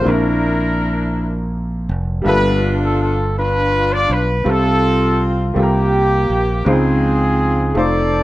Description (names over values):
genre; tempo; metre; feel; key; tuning
gospel; 55 BPM (dotted quarters); 6/8; straight; unclear; A4 = 440 Hz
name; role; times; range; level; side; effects
mellow horn section; melody; 0.0-8.2 s; Bb3 to D5; -17 LUFS; equal; none
clear concert grand piano; accompaniment; 0.0-8.2 s; G2 to E5; -22 LUFS; equal; none
fingered electric bass; bass; 0.0-8.2 s; F1 to Db2; -18 LUFS; right 1 dB; none
percussive tonewheel organ; sustained chords; 6.7-8.2 s; F3 to G5; -24 LUFS; right 2 dB; none
room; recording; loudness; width
moderate studio reverb, RT60 0.5 s; rough home demo mix; -14 LUFS; side -16 dB against mid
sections
0.0-8.2 A section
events
none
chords
0.1 Bbadd9; 2.3 G13; 4.5 F/C; 5.6 C7sus4; 6.7 Dbmaj9#11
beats
| 0.07 1.16 | 2.26 3.36 | 4.46 5.56 | 6.66 7.75